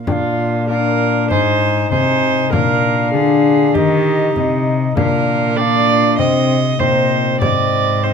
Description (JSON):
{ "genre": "classical, renaissance-style consort dance", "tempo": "98 BPM", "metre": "4/4", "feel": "straight", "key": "Bb mixolydian", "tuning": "A4 = 440 Hz", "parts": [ { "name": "concert harp", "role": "accompaniment", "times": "0.0-8.1 s", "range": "Ab2 to Bb4", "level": "-20 LUFS", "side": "left 13 dB", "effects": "none" }, { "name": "alto recorder", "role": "melody", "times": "0.1-8.1 s", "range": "Eb5 to Ab5", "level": "-25 LUFS", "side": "left 3 dB", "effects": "none" }, { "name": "warm viola", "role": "second line", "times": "0.1-8.1 s", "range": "F4 to Eb5", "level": "-17 LUFS", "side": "right 7 dB", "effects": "none" }, { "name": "mellow bassoon", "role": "accompaniment", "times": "0.1-8.1 s", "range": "C4 to Eb4", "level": "-20 LUFS", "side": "left 2 dB", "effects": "none" }, { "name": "rich cello", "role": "bass", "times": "0.1-8.1 s", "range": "Ab2 to Eb3", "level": "-20 LUFS", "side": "right 1 dB", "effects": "none" }, { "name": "frame drum", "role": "percussion", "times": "0.1-7.7 s", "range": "none", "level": "-22 LUFS", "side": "left 2 dB", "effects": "none" } ], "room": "moderate stone room reverb, RT60 1.0 s", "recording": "close, detailed microphones", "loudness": "-13 LUFS", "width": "side -6 dB against mid", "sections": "0.1-8.1 A section", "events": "none", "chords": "0.1 Bb; 1.3 Ab; 2.5 Bb; 3.7 Eb; 5.0 Bb; 6.2 Cm; 7.4 Ab" }